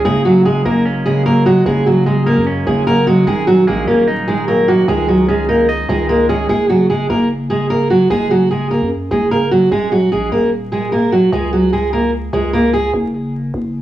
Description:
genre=hip hop, trap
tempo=149 BPM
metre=4/4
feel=half-time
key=unclear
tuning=A4 = 440 Hz
part: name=fingerpicked steel-string acoustic guitar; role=melody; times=0.0-12.9 s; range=Gb3 to Bb4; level=-13 LUFS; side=right 1 dB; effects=low-pass filter, cassette tape, analog delay
part: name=semi-hollow electric guitar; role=accompaniment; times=0.0-6.5 s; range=Db3 to Eb5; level=-18 LUFS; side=right 1 dB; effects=low-pass filter, cassette tape
part: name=growling 808-style bass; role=bass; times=0.0-13.8 s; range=Eb1 to Gb2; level=-21 LUFS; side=left 1 dB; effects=none
room=light reverb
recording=home recording on cassette, vinyl crackle, studio reverb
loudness=-12 LUFS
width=side -13 dB against mid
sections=0.0-6.5 A section; 6.5-13.8 B section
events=break 12.9-13.8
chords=0.0 Gbadd9; 3.3 Ebm7; 4.9 Dbsus2; 6.5 Gbadd9; 9.7 Ebm; 11.3 Db5; 12.9 N.C.

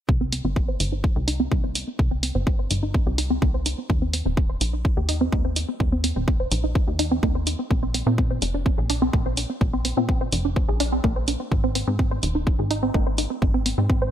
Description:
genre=melodic techno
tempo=126 BPM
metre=4/4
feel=straight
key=C minor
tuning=A4 = 437 Hz
part: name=wide unison pluck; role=arpeggios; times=0.1-14.1 s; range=Bb3 to C5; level=-26 LUFS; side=right 1 dB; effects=analog chorus, sidechain pumping, ping-pong delay
part: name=plucky analog bass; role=bass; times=0.1-14.1 s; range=Eb1 to Bb2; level=-26 LUFS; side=equal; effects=sidechain pumping
part: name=electronic kick drum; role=drums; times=0.1-14.0 s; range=none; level=-22 LUFS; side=equal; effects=none
part: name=electronic hi-hat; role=drums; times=0.3-13.8 s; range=none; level=-27 LUFS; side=right 1 dB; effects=sidechain pumping on hats
room=little or no reverb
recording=bright 1980s-style digital production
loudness=-21 LUFS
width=side -10 dB against mid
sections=0.1-14.1 A section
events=filter sweep on synth arpeggio sound 0.1-14.1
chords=0.1 Cm; 3.9 Eb5; 7.7 Bb; 11.5 Ab

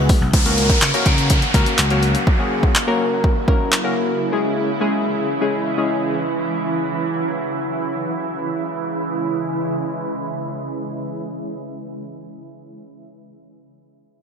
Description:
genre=dance-pop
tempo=124 BPM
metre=4/4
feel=straight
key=C# dorian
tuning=A4 = 441 Hz
part: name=warm analog keys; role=accompaniment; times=0.0-6.1 s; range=G#3 to B4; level=-22 LUFS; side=left 3 dB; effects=chorus, sidechain pumping, low-pass filter
part: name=shimmering ambient pad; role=sustained chords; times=0.0-12.7 s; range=B2 to F#4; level=-23 LUFS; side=right 2 dB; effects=chorus, built-in reverb, sidechain pumping, low-pass filter
part: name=vintage slap bass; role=bass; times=0.0-2.1 s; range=B1 to C#3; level=-19 LUFS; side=equal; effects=sidechain pumping
part: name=punchy analog drum machine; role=drums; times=0.1-3.8 s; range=handclaps, hi-hat, kick drum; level=-17 LUFS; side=equal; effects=overdrive
part: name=downlifter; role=sound effects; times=0.3-4.2 s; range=none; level=-23 LUFS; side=equal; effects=none
room=light reverb, digital ambience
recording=bright 1980s-style digital production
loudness=-17 LUFS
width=side -6 dB against mid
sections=0.3-8.1 A section; 8.1-11.9 B section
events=filter sweep 0.3-8.1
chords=0.3 F#/C#; 4.2 C#m

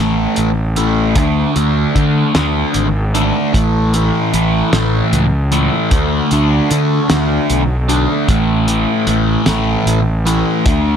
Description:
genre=psychedelic rock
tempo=50 BPM (dotted quarters)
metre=6/8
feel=straight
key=unclear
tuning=A4 = 440 Hz
part: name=fuzz guitar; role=riff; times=0.0-11.0 s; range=A2 to D4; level=-15 LUFS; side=equal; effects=distortion, phaser
part: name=fuzz fingered electric bass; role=bass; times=0.0-10.9 s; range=G#1 to D3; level=-16 LUFS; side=equal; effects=overdrive
part: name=cloth-damped thuddy drum kit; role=drums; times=0.4-10.8 s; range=hi-hat, kick drum, snare drum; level=-18 LUFS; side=equal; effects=none
room=light reverb, small room ambience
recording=none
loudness=-12 LUFS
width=side -8 dB against mid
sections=0.0-11.0 A section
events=none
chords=0.0 A5; 1.2 D5; 3.5 A; 5.9 D5; 8.3 A5

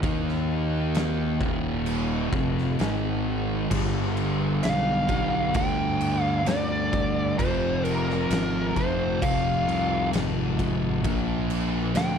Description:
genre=stoner and doom metal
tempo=65 BPM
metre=4/4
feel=straight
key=unclear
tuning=A4 = 441 Hz
part: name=fuzz guitar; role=riff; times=0.0-12.2 s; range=Eb2 to Eb4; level=-28 LUFS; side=left 12 dB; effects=distortion
part: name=thick fuzz guitar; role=riff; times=0.0-12.2 s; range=Eb2 to Eb4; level=-29 LUFS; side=right 11 dB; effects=distortion
part: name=fuzz fingered electric bass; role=bass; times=0.0-12.2 s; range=Eb1 to Eb2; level=-30 LUFS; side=equal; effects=overdrive
part: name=oversized low-tuned drum kit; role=drums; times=0.0-12.2 s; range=crash cymbal, kick drum, snare drum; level=-30 LUFS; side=equal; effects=none
part: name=fuzz lead guitar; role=melody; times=4.6-12.2 s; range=Bb4 to G5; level=-27 LUFS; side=right 1 dB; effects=wah, distortion, slapback echo
room=little or no reverb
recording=none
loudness=-23 LUFS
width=side -7 dB against mid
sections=0.0-3.7 A section; 3.7-12.2 B section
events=none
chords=0.0 Eb5; 2.3 F5; 2.8 Ab5; 3.7 G; 7.4 Fm; 11.0 Bb

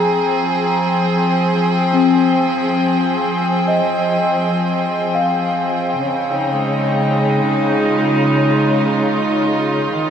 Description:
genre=ambient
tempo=free time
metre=none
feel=none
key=unclear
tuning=A4 = 443 Hz
part: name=rich chamber string section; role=sustained chords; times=0.0-10.1 s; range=Db3 to G5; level=-15 LUFS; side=equal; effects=none
part: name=large celesta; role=arpeggios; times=0.0-9.5 s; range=C4 to Bb5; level=-20 LUFS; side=left 3 dB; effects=lush chorus, diffuse ambient delay
room=wet huge ambient reverb, RT60 8.1 s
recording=dreamy mix soaked in reverb, cassette tape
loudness=-14 LUFS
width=side -8 dB against mid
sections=0.0-10.1 A section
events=none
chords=0.0 Fm7; 6.0 Db

